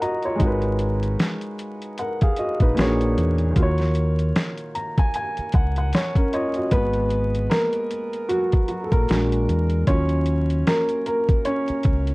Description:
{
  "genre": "lo-fi hip hop",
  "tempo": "76 BPM",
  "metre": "4/4",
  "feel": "swing 58% on 16ths",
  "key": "Eb minor",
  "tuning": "A4 = 437 Hz",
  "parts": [
    { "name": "warm upright piano", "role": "accompaniment", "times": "0.0-12.1 s", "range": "Bb2 to Bb5", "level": "-23 LUFS", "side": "equal", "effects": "none" },
    { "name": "boom bap sampler-style drum kit", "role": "drums", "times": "0.0-12.1 s", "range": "hi-hat, kick drum, snare drum", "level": "-21 LUFS", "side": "equal", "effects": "vintage 12-bit sampler grit" },
    { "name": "deep dub fingered electric bass", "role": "bass", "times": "0.4-12.1 s", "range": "Ab1 to Fb2", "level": "-22 LUFS", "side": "equal", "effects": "none" }
  ],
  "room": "light reverb",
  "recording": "dark, warm production, vinyl crackle",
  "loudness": "-19 LUFS",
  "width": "side -23 dB against mid",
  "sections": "0.0-6.7 A section; 6.7-12.1 A section",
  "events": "upright piano fill 0.0-0.4, 4.3-6.7; upright piano solo 6.7-12.1",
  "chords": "0.4 Abm9; 2.8 Bb7alt; 3.6 Ebm9; 6.7 Abm9; 9.1 Bbaug7; 9.9 Ebm9"
}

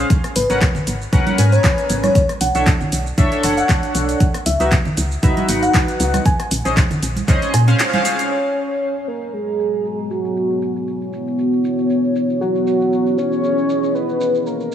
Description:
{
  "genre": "deep house",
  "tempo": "117 BPM",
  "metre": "4/4",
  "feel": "swing 55% on 16ths",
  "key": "unclear",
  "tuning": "A4 = 443 Hz",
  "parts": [
    { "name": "chorused polysynth", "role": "stabs", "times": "0.0-8.3 s", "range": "C#4 to G#5", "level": "-21 LUFS", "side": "equal", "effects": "sidechain pumping, tape echo" },
    { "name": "woody FM bass", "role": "bass", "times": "0.0-7.7 s", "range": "F#1 to A#2", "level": "-18 LUFS", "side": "equal", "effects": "sidechain pumping" },
    { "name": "deep house drum kit", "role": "drums", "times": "0.1-14.7 s", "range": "crash cymbal, handclaps, hi-hat, rim click, shaker", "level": "-23 LUFS", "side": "equal", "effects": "low-pass filter on hats, low-pass filter on perc, low-pass filter on snare, low-pass filter on cymbals, low-pass filter on room" },
    { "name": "electronic kick drum", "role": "drums", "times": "0.1-7.4 s", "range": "none", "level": "-16 LUFS", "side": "equal", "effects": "none" },
    { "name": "bell-like FM electric piano", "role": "melody", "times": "0.4-7.8 s", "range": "B4 to G#5", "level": "-23 LUFS", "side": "left 1 dB", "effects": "chorus, tremolo, tape echo" },
    { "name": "congas", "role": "percussion", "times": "0.7-8.0 s", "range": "none", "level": "-25 LUFS", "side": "right 3 dB", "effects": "sidechain pumping on perc" },
    { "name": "warm velvety synth lead", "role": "melody", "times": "8.3-14.7 s", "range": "F#4 to C#5", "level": "-20 LUFS", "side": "equal", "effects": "chorus, tremolo, tape echo" },
    { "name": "deep dark ambient pad", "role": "sustained chords", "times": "9.4-14.7 s", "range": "G#3 to C#5", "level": "-22 LUFS", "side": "equal", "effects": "chorus, built-in reverb, sidechain pumping" },
    { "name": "warbly tape-like pad", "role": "texture", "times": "9.5-14.7 s", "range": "B3 to A#5", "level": "-23 LUFS", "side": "left 1 dB", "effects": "chorus, built-in reverb, sidechain pumping" }
  ],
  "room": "moderate lush hall reverb, RT60 2.1 s",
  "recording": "small room ambience",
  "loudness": "-15 LUFS",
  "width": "side -9 dB against mid",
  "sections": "0.0-8.3 A section; 8.3-14.7 B section",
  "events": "break 7.8-8.3; band accent 7.8; filter sweep on drum 8.3-14.7; filter sweep on ambient pad 8.3-14.7",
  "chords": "0.1 G#m11; 2.2 Bm11; 4.2 C#m11; 6.3 A#m11; 8.3 G#m11; 10.4 Bm11; 12.4 C#m11"
}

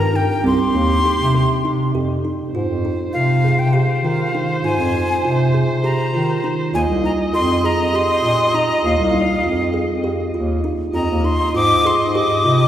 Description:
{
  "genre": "contemporary instrumental, chamber music in an uneven meter",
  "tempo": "200 BPM (eighths)",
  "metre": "7/8",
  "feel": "straight",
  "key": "unclear",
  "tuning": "A4 = 440 Hz",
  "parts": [
    { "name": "breathy bright jazz flute", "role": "melody", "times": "0.0-12.7 s", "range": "F5 to D6", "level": "-20 LUFS", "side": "left 2 dB", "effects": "none" },
    { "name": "dark viola", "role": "second line", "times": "0.0-12.7 s", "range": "G4 to Eb5", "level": "-24 LUFS", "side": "equal", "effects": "none" },
    { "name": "kalimba", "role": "arpeggios", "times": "0.0-12.7 s", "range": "C4 to Ab4", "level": "-22 LUFS", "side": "right 3 dB", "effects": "none" },
    { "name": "mellow bass clarinet", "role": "bass", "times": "0.0-12.7 s", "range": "C2 to Eb3", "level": "-20 LUFS", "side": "left 1 dB", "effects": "none" }
  ],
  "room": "wet concert hall reverb, RT60 2.3 s",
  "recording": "heard from further back in the room",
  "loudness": "-15 LUFS",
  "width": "side -10 dB against mid",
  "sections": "0.0-2.5 A section; 2.5-12.7 B section",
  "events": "none",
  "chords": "0.4 Cm; 2.5 Ab6; 6.7 Ebsus2; 10.9 Fm7"
}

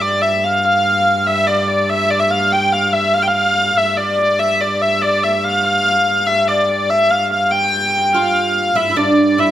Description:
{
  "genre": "medieval dance",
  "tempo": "96 BPM (dotted quarters)",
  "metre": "6/8",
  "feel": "straight",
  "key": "unclear",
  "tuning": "A4 = 444 Hz",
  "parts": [
    { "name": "warm hurdy-gurdy", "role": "melody", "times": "0.0-9.5 s", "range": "D5 to G5", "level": "-14 LUFS", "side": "equal", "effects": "none" },
    { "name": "warm viola da gamba", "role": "drone", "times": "0.0-9.5 s", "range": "G2", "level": "-24 LUFS", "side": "equal", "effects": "none" },
    { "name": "oud", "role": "second line", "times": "8.1-9.5 s", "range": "D4 to F4", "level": "-16 LUFS", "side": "right 3 dB", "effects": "none" }
  ],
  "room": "moderate recital hall reverb, RT60 1.6 s",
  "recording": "none",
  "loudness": "-13 LUFS",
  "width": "side -12 dB against mid",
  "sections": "0.0-8.8 A section",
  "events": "none",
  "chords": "none"
}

